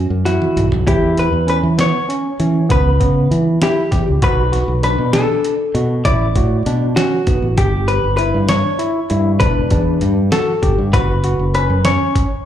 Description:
progressive instrumental, band music in an uneven meter; 197 BPM (eighths); 11/8; straight; A4 = 440 Hz
vintage hollow-body jazz guitar; melody; 0.0-12.5 s; F#4 to D5; -19 LUFS; left 1 dB; slapback echo
barky tine electric piano; arpeggios; 0.0-12.2 s; B3 to G4; -22 LUFS; left 1 dB; medium stereo tremolo, slapback echo
fingered electric bass; bass; 0.0-12.0 s; E1 to E3; -16 LUFS; equal
dusty soul sampler-style drum kit; drums; 0.3-12.3 s; hi-hat, kick drum, snare drum, toms; -19 LUFS; equal; overdrive
digital ambience; live gig heard through the venue's PA, club reverb, faint mains hum; -13 LUFS; side -10 dB against mid
0.9-12.5 A section
drum fill 0.3-0.9
0.0 F#5; 0.9 Em; 4.2 Bm7; 7.6 G5; 10.9 Esus2 (rootless)

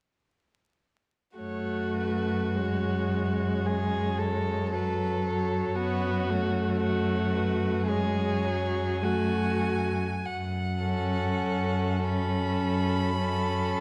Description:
classical, slow romantic movement for string quartet; 46-58 BPM; 4/4; rubato; F# minor; A4 = 439 Hz
rich violin; melody; 1.4-13.8 s; B4 to B5; -39 LUFS; equal
rich violin; second line; 1.4-13.8 s; F#4 to A4; -35 LUFS; equal
clear viola; accompaniment; 1.4-13.8 s; F#3 to C#4; -33 LUFS; equal
rich cello; bass; 1.4-13.8 s; F#2; -32 LUFS; equal
moderate scoring stage reverb, RT60 2.2 s; dark, warm production, vinyl crackle; -28 LUFS; mono
1.4-10.3 A section; 10.3-13.8 B section
1.4 F#m

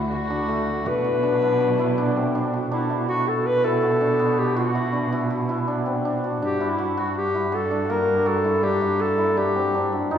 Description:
contemporary instrumental, chamber music in an uneven meter; 162 BPM; 5/4; straight; B phrygian; A4 = 441 Hz
muted studio string section; sustained chords; 0.0-2.7, 10.1-10.2 s; D3 to F#4; -31 LUFS; equal
hammered dulcimer; arpeggios; 0.0-10.2 s; A3 to F#4; -25 LUFS; equal
muted cello; bass; 0.0-10.2 s; D2 to B2; -27 LUFS; right 3 dB
warm clarinet; melody; 0.1-10.2 s; E4 to B4; -22 LUFS; left 2 dB
wet recital hall reverb, RT60 1.4 s; heard from further back in the room; -20 LUFS; side -9 dB against mid
0.0-2.7 A section; 2.7-10.2 B section
0.0 D; 0.9 Bm; 6.4 Gm

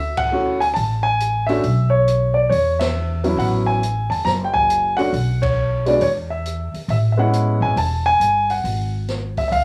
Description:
jazz piano trio; 137 BPM; 4/4; swing 66% on 8ths; A major; A4 = 440 Hz
warm concert grand piano; melody; 0.0-9.6 s; F#3 to Bb5; -21 LUFS; equal; cassette tape
upright bass; bass; 0.0-9.6 s; E1 to E2; -24 LUFS; equal
open jazz drum kit; drums; 0.2-9.6 s; hi-hat, kick drum, ride cymbal, snare drum; -33 LUFS; equal
light reverb, small room ambience; home recording on cassette; -19 LUFS; mono
0.0-9.6 A section
band accent 0.1, 2.7, 5.4
0.0 Dmaj7; 1.6 Bsus2; 2.5 E5; 3.4 A6; 4.3 F#5; 5.1 Bm; 6.0 N.C.; 6.9 Amaj9; 8.6 Eadd9/G# (rootless)

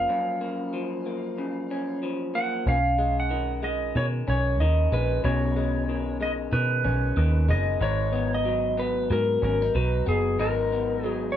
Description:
indie pop, bedroom pop; 93 BPM; 4/4; swing 60% on 16ths; B lydian; A4 = 442 Hz
clean lap steel guitar; melody; 0.0-11.4 s; G#4 to F#5; -27 LUFS; equal
electric guitar through a small old amp; accompaniment; 0.0-11.4 s; F#2 to D#4; -29 LUFS; left 3 dB; warbly pitch drift
vintage muted picked electric bass; bass; 0.0-11.4 s; F#1 to B2; -26 LUFS; equal
light reverb; band playing live in one room; -23 LUFS; side -10 dB against mid
0.0-2.7 A section; 2.7-11.4 B section
break 0.1-2.7
0.0 F#maj7; 2.7 B69

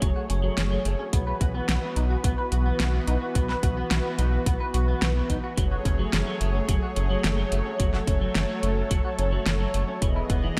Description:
synthwave; 108 BPM; 4/4; straight; F# dorian; A4 = 440 Hz
lush unison pad; sustained chords; 0.0-10.6 s; E3 to D#5; -32 LUFS; equal; chorus, sidechain pumping
clean electric guitar; riff; 0.0-10.6 s; E3 to B4; -37 LUFS; equal; analog chorus, low-pass filter, delay
round analog bass; bass; 0.0-10.6 s; E1 to B1; -28 LUFS; equal; sidechain pumping
electronic kick drum; drums; 0.0-10.4 s; -28 LUFS; equal; small room ambience
pop drum kit; drums; 0.0-10.6 s; hi-hat, snare drum; -32 LUFS; equal; small room ambience
light reverb; dark, warm production; -25 LUFS; mono
0.0-10.6 A section
0.0 F#madd9; 1.1 Bsus4; 5.6 F#madd9; 10.0 Emaj7

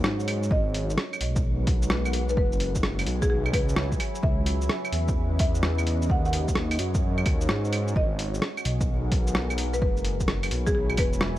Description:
future garage; 129 BPM; 4/4; swing 66% on 16ths; A4 = 437 Hz
deep dark ambient pad; sustained chords; 0.0-11.4 s; G#3 to B5; -34 LUFS; equal; chorus, built-in reverb, sidechain pumping
swelling detuned saw bass; bass; 0.0-11.4 s; E1 to G#2; -27 LUFS; equal; sidechain pumping
lo-fi sampler-style drum kit; drums; 0.0-11.4 s; claves, hi-hat, rim click, shaker; -29 LUFS; right 1 dB; overdrive, studio reverb
buzzing marimba with medium mallets; melody; 0.5-11.4 s; G#4 to F#5; -33 LUFS; equal; digital delay
electronic kick drum; drums; 0.5-11.1 s; -26 LUFS; equal; overdrive, studio reverb
little or no reverb; vinyl crackle; -23 LUFS; side -14 dB against mid
0.0-11.4 A section
0.0 D#m7; 0.5 G#m7; 2.4 F#9sus4; 4.2 C#m7; 6.1 D#m7; 8.0 G#m7; 9.8 F#9sus4

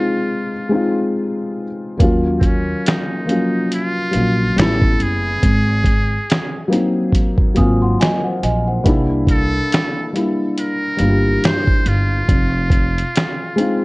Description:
lo-fi hip hop; 70 BPM; 4/4; swing 57% on 16ths; A4 = 441 Hz
trumpet with metal mute; melody; 0.0-13.8 s; C4 to C5; -23 LUFS; equal; low-pass filter
felt-muted upright piano; accompaniment; 0.0-13.8 s; F3 to G4; -18 LUFS; left 1 dB; low-pass filter
upright bass; bass; 2.0-13.0 s; F1 to Eb2; -19 LUFS; equal
dusty soul sampler-style drum kit; drums; 2.0-13.8 s; finger snaps, hi-hat, kick drum, snare drum; -17 LUFS; equal; vintage 12-bit sampler grit
large celesta; second line; 7.6-9.1 s; C5 to Eb6; -23 LUFS; right 1 dB; low-pass filter, tape echo
light reverb; worn, warbling old tape, cassette tape, warbly pitch drift; -14 LUFS; side -23 dB against mid
0.0-13.8 A section
0.0 Fm7; 2.0 Ebm9; 4.6 A9; 5.4 Ab7; 8.9 C7; 12.3 Fm7

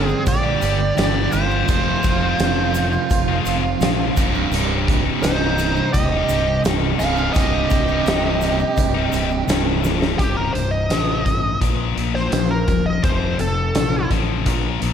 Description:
classic rock; 85 BPM; 4/4; straight; C minor, C dorian from 10.2 s; A4 = 441 Hz
dark smooth lead guitar; melody; 0.0-14.1 s; G4 to F5; -24 LUFS; right 1 dB; wah, overdrive, slapback echo
octave-fuzz lead guitar; second line; 0.0-9.4 s; D4 to Ab4; -27 LUFS; right 4 dB; distortion, slapback echo
cranked stack guitar; riff; 0.0-9.8 s; C2 to G3; -24 LUFS; right 9 dB; overdrive, tremolo
sludgy distorted guitar; riff; 0.0-14.9 s; C2 to G4; -24 LUFS; left 9 dB; overdrive, slapback echo
fuzz fingered electric bass; bass; 0.0-14.9 s; C1 to Bb1; -24 LUFS; equal; overdrive
tube shaker; percussion; 0.1-10.1 s; -40 LUFS; right 13 dB
big rock drum kit; drums; 0.3-14.9 s; hi-hat, kick drum, snare drum, tambourine; -22 LUFS; equal
moderate concert hall reverb, RT60 2.2 s; big arena sound; -16 LUFS; side -8 dB against mid
0.0-10.2 A section; 10.2-14.9 B section
drum fill 9.8-10.2; lead electric guitar solo 10.2-14.9
0.0 Gm; 1.7 Fm; 4.2 Cm; 11.6 Bb5; 13.0 F

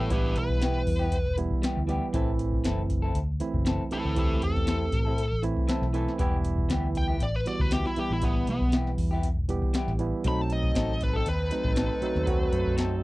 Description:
straight-eighth soul blues; 118 BPM; 4/4; swing 53% on 16ths; E minor; A4 = 441 Hz
smooth overdriven lead guitar; melody; 0.0-12.8 s; B3 to B5; -31 LUFS; left 1 dB
barky tine electric piano; accompaniment; 0.0-13.0 s; E3 to E5; -31 LUFS; right 4 dB; overdrive
electric guitar through a small old amp; stabs; 0.0-12.9 s; E3 to A4; -34 LUFS; left 3 dB
vintage muted fingered electric bass; bass; 0.0-13.0 s; E1 to A2; -29 LUFS; equal
booming analog drum machine; drums; 0.1-12.9 s; hi-hat, kick drum, snare drum; -29 LUFS; equal
bright horn section; sustained chords; 10.3-13.0 s; C4 to A4; -42 LUFS; left 1 dB
little or no reverb; dry, close 1970s-style studio recording; -24 LUFS; side -19 dB against mid
0.0-13.0 A section
lead electric guitar solo 0.0-13.0; tine electric piano fill 5.4-6.2
0.0 Em; 2.1 Am; 6.2 Em; 10.2 B7b9

